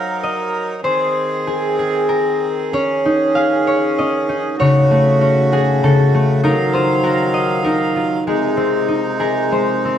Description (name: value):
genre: children's music, lullaby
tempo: 97 BPM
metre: 3/4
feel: rubato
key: unclear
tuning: A4 = 440 Hz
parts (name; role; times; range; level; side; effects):
- concert harp; melody; 0.0-10.0 s; Db3 to F5; -15 LUFS; left 1 dB; none
- accordion; sustained chords; 0.0-10.0 s; C3 to F5; -21 LUFS; right 2 dB; none
room: moderate studio reverb, RT60 0.5 s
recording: band playing live in one room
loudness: -14 LUFS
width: side -9 dB against mid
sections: 0.0-10.0 A section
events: none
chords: 0.0 Ebm; 0.8 Ab; 2.7 Dbsus2; 4.6 Gbm/Db; 6.4 Ebmadd9; 8.3 Ab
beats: 0.22 | 0.83 1.45 2.09 | 2.73 3.36 3.98 | 4.59 5.21 5.83 | 6.44 7.04 7.65 | 8.26 8.88 9.52